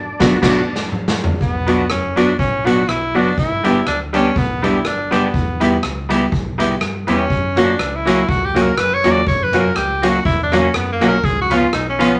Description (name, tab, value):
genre	ska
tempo	122 BPM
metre	4/4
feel	swing 55% on 8ths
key	B harmonic minor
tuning	A4 = 439 Hz
part	overdriven tonewheel organ	melody	0.0-0.9 s	D4	-30 LUFS	equal	chorus vibrato, slow rotary speaker
part	semi-hollow electric guitar	accompaniment	0.2-12.2 s	E#3 to G4	-21 LUFS	equal	vibrato effect
part	honky-tonk upright piano	stabs	0.2-12.1 s	A#3 to G4	-21 LUFS	equal	none
part	fingered electric bass	bass	0.2-12.1 s	F#1 to G2	-29 LUFS	equal	none
part	street-band drum kit	drums	0.2-12.1 s	crash cymbal, hi-hat, kick drum, rim click, snare drum, toms	-24 LUFS	equal	none
part	clear tenor saxophone	melody	1.4-12.2 s	A#3 to D5	-22 LUFS	equal	none
room	wet studio reverb, RT60 0.6 s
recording	nothing above 11.0 kHz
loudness	-17 LUFS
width	mono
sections	0.0-1.4 A section; 1.4-12.2 B section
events	band accent 0.0-1.4; drum fill 0.4-1.4; tenor saxophone solo 1.4-12.2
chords	0.0 Bm; 3.4 G; 5.3 Em; 7.3 F#; 11.2 C#7